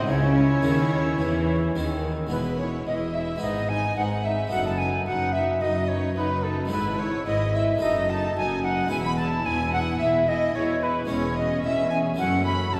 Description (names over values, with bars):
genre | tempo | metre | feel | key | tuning
classical, baroque-style concerto movement with solo episodes | 109 BPM | 4/4 | straight | E major | A4 = 440 Hz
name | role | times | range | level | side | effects
rich chamber violin section | melody | 0.0-12.8 s | G#4 to C#5 | -44 LUFS | equal | none
harpsichord | accompaniment | 0.0-12.8 s | E2 to C#5 | -35 LUFS | equal | none
rich chamber viola section | accompaniment | 0.0-12.8 s | C#4 to E4 | -34 LUFS | equal | none
rich chamber double bass section | bass | 0.0-12.8 s | E1 to E2 | -32 LUFS | equal | none
warm studio cello section | bass | 0.0-12.8 s | E2 to E3 | -31 LUFS | equal | none
silver concert flute | melody | 0.1-12.8 s | A4 to B5 | -29 LUFS | equal | none
clear chamber violin section | second line | 0.1-12.8 s | C#4 to B5 | -36 LUFS | equal | none
room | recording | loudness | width
wet church reverb, RT60 2.7 s | none | -24 LUFS | mono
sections
0.0-2.3 A section; 2.3-12.8 B section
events
none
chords
0.1 C#m; 2.3 E; 3.4 G#m; 4.5 B7/F#; 6.7 E/G#; 7.8 D#dim/F#; 8.9 E; 11.1 C#m/E; 12.2 F#m